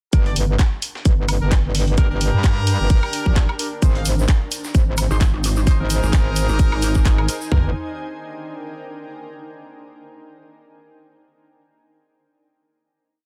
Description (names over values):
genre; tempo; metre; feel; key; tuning
bass house; 130 BPM; 4/4; swing 56% on 16ths; G phrygian; A4 = 442 Hz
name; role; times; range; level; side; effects
bright horn section; stabs; 0.1-7.7 s; D4 to F5; -31 LUFS; equal; sidechain pumping, dub echo
metallic wobble bass; bass; 0.1-7.7 s; G1 to G2; -22 LUFS; equal; chorus, sidechain pumping
breakbeat sampler-style drum kit; drums; 0.1-7.4 s; hi-hat, shaker, snare drum; -37 LUFS; equal; none
garage drum kit; drums; 0.1-7.6 s; kick drum, toms; -18 LUFS; equal; studio reverb
granular cloud pad; texture; 1.3-9.3 s; D4 to Ab5; -34 LUFS; equal; built-in reverb, sidechain pumping
garage drum kit; drums; 0.4-7.4 s; handclaps, hi-hat, woodblock; -29 LUFS; equal; studio reverb
egg shaker; percussion; 3.8-7.5 s; none; -36 LUFS; equal; none
pulsing pluck wobble bass; bass; 5.1-7.3 s; Ab1; -22 LUFS; equal; chorus, overdrive, sidechain pumping
room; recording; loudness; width
little or no reverb; dense, heavily limited modern master; -18 LUFS; mono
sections
0.1-7.5 drop; 7.5-9.4 final chord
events
drop 0.1-7.5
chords
0.1 Gm; 3.8 Ab; 7.5 Gm